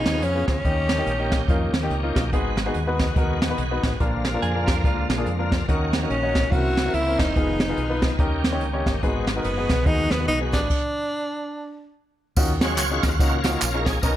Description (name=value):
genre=uptempo gospel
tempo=143 BPM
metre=4/4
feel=swing 59% on 8ths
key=Eb minor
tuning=A4 = 440 Hz
part: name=breathy tenor saxophone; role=melody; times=0.0-1.7, 6.1-11.9 s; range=Cb4 to Gb4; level=-25 LUFS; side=equal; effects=none
part: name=overdriven tonewheel organ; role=sustained chords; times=0.0-14.2 s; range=D3 to Db5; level=-30 LUFS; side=right 1 dB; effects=fast rotary speaker, chorus vibrato
part: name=warm baby grand piano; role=accompaniment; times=0.1-14.2 s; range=Ab2 to Db5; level=-27 LUFS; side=left 2 dB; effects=none
part: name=deep dub fingered electric bass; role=bass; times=0.1-14.2 s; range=E1 to F2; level=-27 LUFS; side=equal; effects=none
part: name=jazz brush drum kit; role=drums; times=0.1-14.1 s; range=crash cymbal, hi-hat, kick drum, snare drum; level=-24 LUFS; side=equal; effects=none
part: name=clean electric guitar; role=second line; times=4.4-5.5 s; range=Ab3 to Bb4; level=-31 LUFS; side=right 7 dB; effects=none
part: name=tambourine and handclaps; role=percussion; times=12.4-14.1 s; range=none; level=-30 LUFS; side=right 3 dB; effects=none
room=light reverb, studio reverb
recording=none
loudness=-20 LUFS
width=side -12 dB against mid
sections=0.0-12.4 A section; 12.4-14.2 B section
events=stop 10.7-12.4; tonewheel organ solo 12.4-14.2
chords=0.0 Db7; 0.6 Eb7; 2.3 Abm7; 4.0 Bb; 5.7 Ebm7; 6.5 C7b9; 7.4 Fm7b5; 8.2 Eb7; 9.0 Abm7; 10.7 N.C.; 12.4 Ebm9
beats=0.23 | 0.65 1.07 1.49 1.91 | 2.33 2.75 3.17 3.58 | 4.00 4.42 4.84 5.26 | 5.68 6.10 6.52 6.94 | 7.36 7.78 8.20 8.61 | 9.03 9.45 9.87 10.28 | 10.70 11.12 11.54 11.95 | 12.37 12.78 13.20 13.61 | 14.03